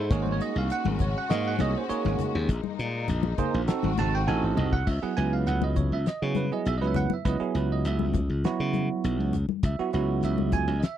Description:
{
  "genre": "electric jazz fusion",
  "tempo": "101 BPM",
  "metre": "4/4",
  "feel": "straight",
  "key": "C# minor from 4.9 s",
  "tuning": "A4 = 440 Hz",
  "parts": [
    { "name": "bell-like tine electric piano", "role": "accompaniment", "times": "0.0-11.0 s", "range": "F#3 to A5", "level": "-28 LUFS", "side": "right 6 dB", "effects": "lush chorus" },
    { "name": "rich studio string section", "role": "sustained chords", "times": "0.0-4.9 s", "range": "Ab3 to Gb4", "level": "-35 LUFS", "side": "left 7 dB", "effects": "none" },
    { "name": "glassy slap bass", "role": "bass", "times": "0.0-10.8 s", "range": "Ab1 to C#3", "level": "-27 LUFS", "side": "left 1 dB", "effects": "none" },
    { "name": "damped 70s drum kit", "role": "drums", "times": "0.1-11.0 s", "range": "crash cymbal, hi-hat, kick drum, snare drum, toms", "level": "-28 LUFS", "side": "left 1 dB", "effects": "none" },
    { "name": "congas", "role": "percussion", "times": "0.3-10.7 s", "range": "none", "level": "-32 LUFS", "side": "left 9 dB", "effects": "none" }
  ],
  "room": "little or no reverb",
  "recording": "dry, close 1970s-style studio recording",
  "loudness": "-24 LUFS",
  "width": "side -11 dB against mid",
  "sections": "0.0-4.9 A section; 4.9-11.0 A section",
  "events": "drum fill 4.3-4.9",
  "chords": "0.1 Ab9sus4; 2.5 Bb9sus4; 3.7 Ab7b9; 4.9 C#m7"
}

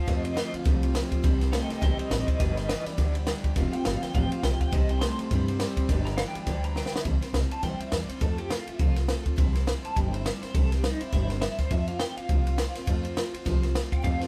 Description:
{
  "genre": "rockabilly",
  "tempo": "206 BPM",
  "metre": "4/4",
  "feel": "swing 58% on 8ths",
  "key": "C major",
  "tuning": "A4 = 442 Hz",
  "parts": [
    { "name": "electric guitar through a small old amp", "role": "melody", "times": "0.0-14.3 s", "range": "Eb4 to C6", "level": "-38 LUFS", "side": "equal", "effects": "tremolo" },
    { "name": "picked steel-string acoustic guitar", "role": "accompaniment", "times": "0.0-14.3 s", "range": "C3 to C5", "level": "-37 LUFS", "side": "equal", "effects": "none" },
    { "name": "electric guitar through a small old amp", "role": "riff", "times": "0.1-7.0, 14.0-14.3 s", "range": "F2 to A3", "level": "-36 LUFS", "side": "equal", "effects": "spring reverb" },
    { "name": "upright bass", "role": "bass", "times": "0.1-14.3 s", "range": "F1 to G2", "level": "-31 LUFS", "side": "equal", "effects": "none" },
    { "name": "compact cocktail drum kit", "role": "drums", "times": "0.1-14.3 s", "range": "kick drum, ride cymbal, snare drum", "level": "-31 LUFS", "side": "equal", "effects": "none" }
  ],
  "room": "light reverb",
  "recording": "band playing live in one room",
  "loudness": "-27 LUFS",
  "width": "mono",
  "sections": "0.0-7.1 A section; 7.1-14.3 B section",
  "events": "clean electric guitar solo 0.0-7.1; drum fill 6.8",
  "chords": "0.0 F; 1.2 C; 2.4 G; 3.6 F; 4.7 C; 5.9 G; 7.1 C; 8.2 F; 9.4 C; 11.7 F"
}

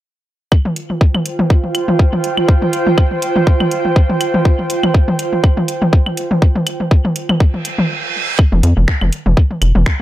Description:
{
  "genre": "minimal techno",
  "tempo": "122 BPM",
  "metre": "4/4",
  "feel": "swing 55% on 16ths",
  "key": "unclear",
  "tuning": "A4 = 437 Hz",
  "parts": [
    { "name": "electronic kick drum", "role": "drums", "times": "0.5-10.0 s", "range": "none", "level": "-11 LUFS", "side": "equal", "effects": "none" },
    { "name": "electronic claves and toms", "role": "percussion", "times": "0.5-10.0 s", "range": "none", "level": "-18 LUFS", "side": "equal", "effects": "none" },
    { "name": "airy breathy pad", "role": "texture", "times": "0.9-7.9 s", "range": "F4 to G5", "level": "-19 LUFS", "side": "right 3 dB", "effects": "chorus, sidechain pumping" },
    { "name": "booming analog drum machine", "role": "drums", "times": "0.8-10.0 s", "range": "finger snaps, hi-hat", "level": "-24 LUFS", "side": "equal", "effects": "none" },
    { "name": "reverse cymbal", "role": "sound effects", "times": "7.6-8.4 s", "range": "none", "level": "-21 LUFS", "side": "right 5 dB", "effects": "none" },
    { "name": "rubbery square bass", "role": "bass", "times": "8.5-9.8 s", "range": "F1 to F2", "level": "-12 LUFS", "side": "equal", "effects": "sidechain pumping" }
  ],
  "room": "little or no reverb",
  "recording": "none",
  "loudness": "-12 LUFS",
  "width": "side -14 dB against mid",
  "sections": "0.5-8.4 A section; 8.4-10.0 B section",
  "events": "reverse cymbal 7.6-8.4; stop 7.9-8.4",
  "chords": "0.5 F5; 8.4 N.C."
}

